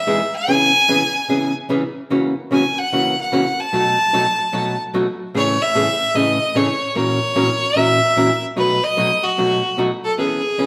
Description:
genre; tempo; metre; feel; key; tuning
country; 149 BPM; 4/4; swing 65% on 8ths; unclear; A4 = 440 Hz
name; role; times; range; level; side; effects
clear fiddle; melody; 0.0-10.7 s; F#4 to A5; -20 LUFS; equal; none
archtop guitar, miked and amplified; accompaniment; 0.1-10.7 s; A2 to A#4; -22 LUFS; equal; none
room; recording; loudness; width
wet stone room reverb, RT60 1.3 s; band playing live in one room; -18 LUFS; mono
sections
0.0-10.7 A section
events
none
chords
0.5 C#m7; 2.1 F#7/C#; 3.7 B7; 5.3 Amaj7; 7.0 F#7/A#; 8.6 B7

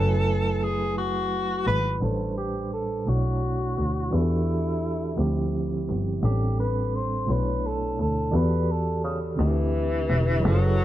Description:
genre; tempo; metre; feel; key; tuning
slow six-eight R&B; 57 BPM (dotted quarters); 6/8; straight; unclear; A4 = 440 Hz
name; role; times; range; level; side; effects
warm tenor saxophone; melody; 0.0-10.8 s; C#3 to C5; -28 LUFS; left 1 dB; none
overdriven tine electric piano; accompaniment; 0.0-10.8 s; A2 to G#5; -28 LUFS; right 2 dB; fast tremolo
bright double bass; bass; 0.0-10.8 s; E1 to E2; -25 LUFS; equal; none
room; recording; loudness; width
studio reverb; dark, warm production, low-pass filter; -23 LUFS; side -13 dB against mid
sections
0.0-2.0 A section; 2.0-10.4 B section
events
filter sweep 2.0-10.4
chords
0.0 F#m11; 2.0 Am11; 3.1 Bm11; 4.1 Em11; 5.2 Dm11; 6.2 Am7; 7.3 Bm11; 8.3 Em11; 9.4 D9sus4

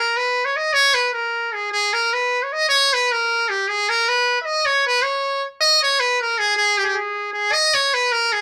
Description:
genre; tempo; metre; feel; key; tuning
balkan folk; free time; none; none; unclear; A4 = 438 Hz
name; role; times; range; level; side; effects
trumpet with metal mute; solo; 0.0-8.4 s; G4 to E5; -18 LUFS; equal; none
room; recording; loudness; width
light reverb; dark, warm production; -19 LUFS; mono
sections
0.0-5.6 A section; 5.6-8.4 B section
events
none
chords
none

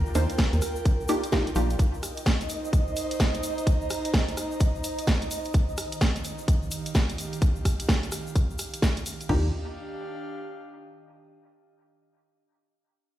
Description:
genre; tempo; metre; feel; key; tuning
UK garage, two-step garage; 128 BPM; 4/4; swing 62% on 16ths; Eb major; A4 = 440 Hz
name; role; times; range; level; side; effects
soft string machine; sustained chords; 0.0-9.3 s; Bb4 to Eb6; -37 LUFS; right 3 dB; phaser, ensemble chorus, sidechain pumping
organ-like FM bass; bass; 0.0-1.8, 9.3-9.5 s; Bb1 to Eb2; -24 LUFS; equal; none
airy breathy pad; texture; 0.0-11.1 s; Eb3 to Bb5; -37 LUFS; right 1 dB; chorus, sidechain pumping
tube shaker; percussion; 0.1-9.3 s; none; -41 LUFS; left 3 dB; none
punchy chord stab; stabs; 0.2-1.7, 9.3-9.5 s; Bb3 to C5; -29 LUFS; equal; chorus, dub echo
garage drum kit; drums; 0.2-9.3 s; hi-hat, rim click, snare drum; -30 LUFS; right 1 dB; small room ambience
garage drum kit; drums; 0.4-9.4 s; crash cymbal, kick drum; -23 LUFS; equal; small room ambience
room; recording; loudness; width
light reverb; played on a big sound system in a bare room, stone room reverb; -24 LUFS; side -13 dB against mid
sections
0.0-9.3 A section; 9.3-11.2 B section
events
fade-out on analog synth pad 0.0-9.3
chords
0.0 Ebmaj9; 1.8 Ebadd9; 9.3 Ebmaj9

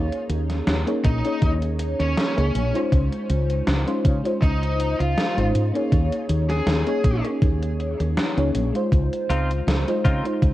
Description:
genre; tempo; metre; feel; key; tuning
vaporwave; 80 BPM; 4/4; swing 54% on 16ths; unclear; A4 = 441 Hz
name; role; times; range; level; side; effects
FM electric piano with soft pad layer; accompaniment; 0.0-10.5 s; Ab3 to Db5; -25 LUFS; left 1 dB; analog chorus, tape echo
woody fretless electric bass; bass; 0.0-10.5 s; Ab1 to Db3; -23 LUFS; equal; tube saturation, lush chorus
gated 80s digital drum machine; drums; 0.1-10.5 s; hi-hat, snare drum; -27 LUFS; equal; gated reverb, gated reverb snare, overdrive, studio ambience
high-gain lead guitar; melody; 1.0-7.2 s; Db4 to Ab4; -30 LUFS; left 1 dB; distortion, tape echo
electronic kick drum; drums; 1.0-10.5 s; none; -20 LUFS; equal; overdrive, studio ambience
clean electric guitar; riff; 9.3-10.2 s; C4 to F4; -29 LUFS; left 1 dB; analog chorus, vintage 12-bit sampler grit, tape echo
room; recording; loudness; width
light reverb, digital ambience; worn, warbling old tape, cassette tape, warbly pitch drift; -19 LUFS; side -15 dB against mid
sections
0.0-10.5 A section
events
none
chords
0.0 Eb7sus4; 2.9 Dbmaj9; 5.9 Eb7sus4; 8.9 Dbmaj9

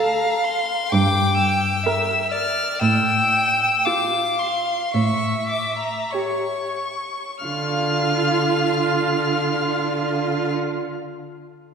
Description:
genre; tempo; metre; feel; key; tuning
classical, slow romantic movement for string quartet; 42-66 BPM; 4/4; rubato; D minor; A4 = 440 Hz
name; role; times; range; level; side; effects
rich violin; melody; 0.0-10.5 s; Bb5 to F6; -23 LUFS; left 3 dB; none
clear violin; second line; 0.0-10.5 s; C#5 to G5; -25 LUFS; right 1 dB; none
rich viola; accompaniment; 0.0-10.5 s; F4 to Bb4; -25 LUFS; right 3 dB; none
clear cello; bass; 0.9-10.5 s; G2 to D3; -23 LUFS; right 1 dB; none
room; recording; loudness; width
wet concert hall reverb, RT60 2.3 s; recorded in a church or concert hall; -18 LUFS; side -6 dB against mid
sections
0.0-7.4 A section; 7.4-11.7 B section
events
slowing down 0.0-7.4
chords
0.0 Dm (rootless); 0.9 Gm; 2.8 Fmaj13/A; 4.9 A7; 7.4 Dm

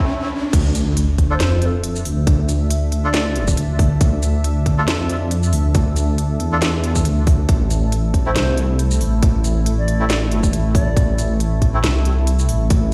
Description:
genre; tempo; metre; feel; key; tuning
deep dubstep; 138 BPM; 4/4; swing 55% on 16ths, half-time; D minor; A4 = 439 Hz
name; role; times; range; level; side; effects
deep dark ambient pad; sustained chords; 1.1-12.9 s; A3 to E5; -31 LUFS; equal; chorus, built-in reverb
dark detuned saw bass; bass; 0.0-12.9 s; A1 to F2; -20 LUFS; equal; high-pass filter
electronic kick drum; drums; 0.0-12.8 s; none; -19 LUFS; equal; none
riser and sub drop; sound effects; 0.0-2.3 s; none; -27 LUFS; equal; none
garage drum kit; drums; 0.5-12.8 s; crash cymbal, hi-hat, shaker, snare drum; -27 LUFS; equal; none
breathy low ney; melody; 1.3-3.5, 8.3-11.4 s; A4 to D5; -31 LUFS; equal; dub echo
melodica; stabs; 1.3-11.8 s; A3 to A4; -30 LUFS; equal; dub echo
room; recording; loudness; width
light reverb; played on a big sound system in a bare room, stone room reverb; -18 LUFS; mono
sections
0.5-12.9 A section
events
riser 0.0-0.5; stop 0.1-0.5; drop 0.5-12.9; impact 0.5-2.3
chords
0.0 N.C.; 0.5 Dm; 7.5 Am

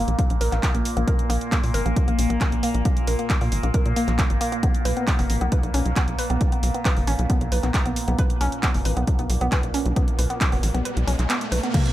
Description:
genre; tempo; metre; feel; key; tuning
driving peak-time techno; 135 BPM; 4/4; straight; unclear; A4 = 442 Hz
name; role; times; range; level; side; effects
tight sequencer bass; bass; 0.0-11.6 s; F#1 to Bb2; -23 LUFS; equal; sidechain pumping
overtone-sweeping drone; drone; 0.0-11.8 s; Bb2 to Bb3; -30 LUFS; left 1 dB; chorus, built-in reverb, sidechain pumping
techno drum kit; drums; 0.1-11.9 s; crash cymbal, handclaps, hi-hat, ride cymbal; -29 LUFS; right 1 dB; overdrive, sidechain pumping on hats, sidechain pumping on cymbals
woody wave-folded pluck; riff; 0.2-11.8 s; Bb3 to B4; -28 LUFS; equal; chorus, tube saturation, cassette tape, sidechain pumping, dub echo
electronic kick drum; drums; 0.2-11.8 s; none; -23 LUFS; equal; none
riser and sub drop; sound effects; 10.1-11.9 s; none; -30 LUFS; equal; none
room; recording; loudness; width
digital ambience; none; -20 LUFS; side -14 dB against mid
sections
0.0-11.7 A section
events
riser 10.1-11.7; kick drops out 10.9-11.7; impact 11.7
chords
0.0 N.C.; 4.6 B5

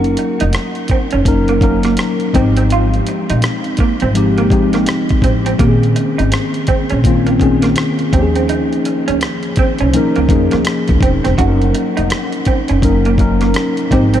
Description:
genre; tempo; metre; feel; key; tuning
R&B, neo-soul; 83 BPM; 4/4; swing 61% on 16ths; unclear; A4 = 438 Hz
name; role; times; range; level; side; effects
tine electric piano; accompaniment; 0.0-14.2 s; Eb3 to Bb4; -15 LUFS; left 2 dB; analog chorus
upright bass; bass; 0.0-14.2 s; E1 to F2; -16 LUFS; equal; none
dusty soul sampler-style drum kit; drums; 0.0-14.2 s; hi-hat, kick drum, rim click; -18 LUFS; equal; none
electric guitar through a small old amp; second line; 0.2-14.2 s; Bb3 to Gb4; -20 LUFS; right 5 dB; wide subtle chorus
room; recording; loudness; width
moderate huge ambient reverb, RT60 8.0 s; dreamy mix soaked in reverb; -12 LUFS; side -10 dB against mid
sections
0.0-14.2 A section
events
none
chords
0.0 Gb6; 2.3 Fm9/Ab; 5.6 Bbm11; 8.1 Eb9sus4; 11.4 Gb6

